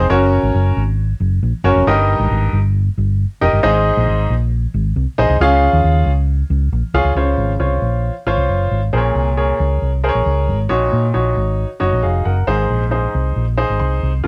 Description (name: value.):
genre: uptempo 1960s-style soul.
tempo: 136 BPM.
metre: 4/4.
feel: straight.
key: Db major.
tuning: A4 = 440 Hz.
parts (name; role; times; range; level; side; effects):
clear baby grand piano; accompaniment; 0.0-14.3 s; G2 to C6; -19 LUFS; equal; none.
hollow-body short-scale fingered electric bass; bass; 0.0-14.3 s; F1 to Bb2; -19 LUFS; equal; none.
room: light reverb.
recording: dark, warm production.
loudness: -16 LUFS.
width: mono.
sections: 0.0-7.2 A section; 7.2-14.3 B section.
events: grand piano fill 13.6-14.3.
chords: 0.1 Gb; 1.9 Eb/G; 3.6 Ab; 5.4 Db; 7.2 Dbmaj7; 8.9 Bbm7; 10.7 Ebm7; 12.5 Ab.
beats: | 0.11 0.55 0.99 1.43 | 1.87 2.31 2.75 3.19 | 3.63 4.07 4.51 4.96 | 5.40 5.84 6.28 6.72 | 7.16 7.61 8.05 8.49 | 8.93 9.38 9.82 10.26 | 10.71 11.15 11.59 12.04 | 12.48 12.92 13.37 13.81 | 14.25.